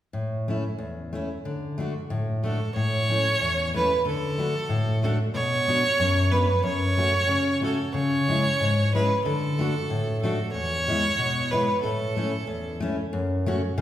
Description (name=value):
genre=alpine folk, alpine dance band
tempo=92 BPM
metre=2/4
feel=straight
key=A major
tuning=A4 = 441 Hz
part: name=picked steel-string acoustic guitar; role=accompaniment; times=0.1-13.8 s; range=E2 to F#4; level=-25 LUFS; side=left 1 dB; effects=none
part: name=bright fiddle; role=melody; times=2.4-12.8 s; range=A4 to C#5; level=-25 LUFS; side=right 2 dB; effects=none
room=wet recital hall reverb, RT60 1.7 s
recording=recorded in a church or concert hall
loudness=-22 LUFS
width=side -12 dB against mid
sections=0.1-2.8 A section; 2.8-13.1 B section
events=none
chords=0.1 A; 1.4 D; 2.8 A; 4.1 D; 5.3 Bm; 6.6 F#m; 7.9 C#m; 9.2 D; 10.5 E; 11.8 A; 13.1 F#m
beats=| 0.13 0.79 | 1.45 2.10 | 2.75 3.41 | 4.06 4.70 | 5.35 5.99 | 6.64 7.29 | 7.95 8.60 | 9.25 9.90 | 10.54 11.18 | 11.82 12.47 | 13.12 13.77